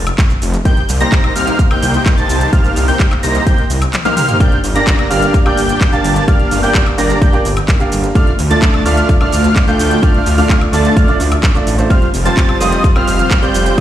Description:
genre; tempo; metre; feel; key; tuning
EDM, festival progressive house; 128 BPM; 4/4; straight; G minor; A4 = 440 Hz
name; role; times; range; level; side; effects
wide detuned saw bass; bass; 0.0-13.7 s; F1 to D2; -15 LUFS; equal; chorus, sidechain pumping
house drum kit; drums; 0.1-13.8 s; handclaps, hi-hat, shaker, toms, woodblock; -21 LUFS; equal; none
electronic kick drum; drums; 0.2-13.8 s; none; -12 LUFS; equal; none
wide unison lead; arpeggios; 0.7-13.8 s; Eb6 to Bb6; -20 LUFS; equal; lush chorus, cassette tape, sidechain pumping, digital delay
dense compressed supersaw; riff; 0.7-13.8 s; G3 to Bb5; -18 LUFS; equal; sidechain pumping, digital delay
clear baby grand piano; accompaniment; 4.4-13.8 s; G3 to F5; -18 LUFS; right 2 dB; sidechain pumping, digital delay
room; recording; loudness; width
light reverb; played on a big sound system in a bare room, stone room reverb; -10 LUFS; side -12 dB against mid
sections
0.0-13.8 A section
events
drum fill 3.9-4.4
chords
0.0 N.C.; 0.7 Cm7; 4.4 Gm; 8.2 Dm; 11.9 Fsus2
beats
0.18 | 0.65 1.12 1.59 2.06 | 2.53 3.00 3.47 3.93 | 4.40 4.87 5.34 5.81 | 6.28 6.75 7.22 7.68 | 8.15 8.62 9.09 9.56 | 10.03 10.50 10.97 11.43 | 11.90 12.37 12.84 13.31 | 13.78

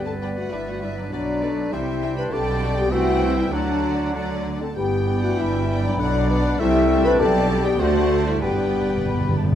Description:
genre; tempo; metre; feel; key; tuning
quick classical-period movement for symphony orchestra; 98 BPM; 2/4; rubato; G major; A4 = 440 Hz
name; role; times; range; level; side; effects
bright oboe; second line; 0.0-9.4 s; B4 to G5; -34 LUFS; right 1 dB; none
mellow flute section; second line; 0.0-9.4 s; D5 to B5; -33 LUFS; right 2 dB; none
warm clarinet; second line; 0.0-9.4 s; F#3 to D4; -31 LUFS; left 1 dB; none
mellow bassoon; accompaniment; 0.0-9.4 s; D3 to B3; -30 LUFS; left 1 dB; none
mellow French horn section; sustained chords; 0.0-9.4 s; D4 to B4; -23 LUFS; left 3 dB; none
rich studio cello section; bass; 0.0-9.5 s; G2 to D3; -31 LUFS; right 2 dB; none
warm studio double bass section; bass; 0.0-9.5 s; G1 to D2; -26 LUFS; right 3 dB; none
warm studio violin section; melody; 0.1-9.4 s; D5 to B5; -34 LUFS; left 4 dB; none
rich studio violin section; second line; 0.2-9.5 s; B4 to G5; -33 LUFS; left 2 dB; none
rich symphonic viola section; accompaniment; 0.2-9.5 s; E3 to G4; -33 LUFS; right 2 dB; none
timpani; percussion; 8.4-9.6 s; G2; -23 LUFS; equal; none
room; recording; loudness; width
moderate scoring stage reverb, RT60 1.8 s; none; -19 LUFS; side -10 dB against mid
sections
0.0-9.6 A section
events
timpani fill 8.4-9.6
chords
0.0 G; 1.1 Bm; 1.7 C; 2.3 G/B; 2.9 C; 3.5 D; 4.8 G; 6.0 Bm; 6.6 C; 7.2 G/B; 7.8 D7; 8.4 G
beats
0.53 | 1.13 1.73 | 2.32 2.92 | 3.53 4.16 | 4.78 5.39 | 6.00 6.60 | 7.20 7.80 | 8.43 9.06

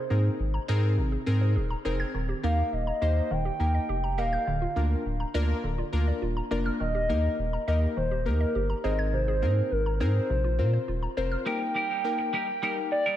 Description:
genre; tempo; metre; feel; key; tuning
pop; 103 BPM; 4/4; straight; Eb major; A4 = 441 Hz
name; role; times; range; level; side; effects
hollow clarinet-like synth lead; melody; 0.0-13.2 s; Bb4 to G5; -30 LUFS; equal; chorus, ping-pong delay
hollow square pluck; arpeggios; 0.0-11.4 s; C3 to Ab6; -36 LUFS; right 3 dB; chorus, ping-pong delay
glassy digital keys; accompaniment; 0.1-12.9 s; Bb3 to C5; -32 LUFS; left 3 dB; chorus
saturated sub bass; bass; 0.1-11.4 s; D1 to Bb2; -26 LUFS; equal; none
clean electric guitar; riff; 11.5-13.2 s; G3 to Bb4; -30 LUFS; right 2 dB; lush chorus
room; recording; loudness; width
light reverb, digital ambience; none; -25 LUFS; side -12 dB against mid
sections
0.0-11.5 A section; 11.5-13.2 B section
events
build-up 11.5-13.2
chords
0.0 Abadd9; 2.1 Eb; 4.5 Bb/D; 6.8 Eb; 8.8 Abadd9; 10.3 Bbsus2; 11.5 Eb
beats
0.40 0.98 1.56 | 2.14 2.73 3.31 3.89 | 4.47 5.06 5.64 6.22 | 6.80 7.39 7.97 8.55 | 9.13 9.72 10.30 10.88 | 11.46 12.05 12.63

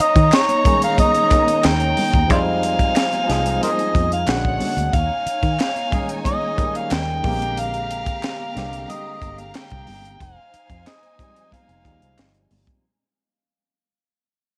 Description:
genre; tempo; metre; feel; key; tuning
lush 1970s-style soul; 91 BPM; 4/4; straight; F minor; A4 = 440 Hz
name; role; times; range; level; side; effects
overdriven harmonica; melody; 0.0-12.5 s; Bb4 to G5; -23 LUFS; equal; none
rich studio violin section; second line; 0.0-12.8 s; D4 to Bb5; -31 LUFS; equal; none
fingered electric bass; bass; 0.0-12.7 s; F1 to Eb3; -25 LUFS; equal; none
tight funk drum kit; drums; 0.0-12.8 s; hi-hat, kick drum, snare drum; -23 LUFS; equal; none
congas; percussion; 0.3-12.7 s; none; -34 LUFS; equal; none
group handclap; percussion; 0.3-12.3 s; none; -36 LUFS; equal; none
barky tine electric piano; accompaniment; 0.6-12.9 s; D3 to Ab4; -28 LUFS; equal; subtle chorus
room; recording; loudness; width
light reverb, studio reverb; none; -19 LUFS; mono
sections
0.0-12.8 A section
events
fade-out 0.2-12.8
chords
0.0 Eb7sus4; 2.3 Fm9; 4.3 Bb7alt; 4.9 Eb7sus4; 7.2 Bb13; 10.2 Fm9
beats
0.32 0.98 1.64 | 2.30 2.96 3.62 4.28 | 4.93 5.59 6.25 6.91 | 7.57 8.23 8.89 9.55 | 10.21 10.86 11.52 12.18

